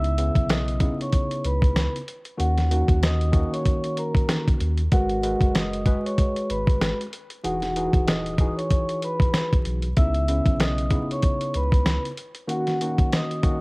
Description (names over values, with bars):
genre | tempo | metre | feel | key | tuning
hip hop, boom-bap hip-hop | 95 BPM | 4/4 | swing 57% on 16ths | G# minor | A4 = 440 Hz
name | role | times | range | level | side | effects
vibraphone with soft mallets | melody | 0.0-13.6 s | F#4 to E6 | -28 LUFS | equal | high-pass filter, low-pass filter, cassette tape, tape echo
tine electric piano | accompaniment | 0.0-13.6 s | C#3 to B4 | -28 LUFS | equal | medium stereo tremolo, cassette tape, high-pass filter, low-pass filter
saturated sub bass | bass | 0.0-12.0 s | D#1 to D#3 | -25 LUFS | equal | none
dusty soul sampler-style drum kit | drums | 0.0-13.6 s | hi-hat, kick drum, snare drum | -22 LUFS | equal | cassette tape
room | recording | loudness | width
little or no reverb | home recording on cassette, vinyl crackle | -20 LUFS | side -29 dB against mid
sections
0.0-4.9 A section; 4.9-13.6 A section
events
none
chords
0.0 C#m9; 2.4 D#m7; 4.9 G#m9; 7.4 Emaj9; 10.0 C#m9; 12.5 D#m7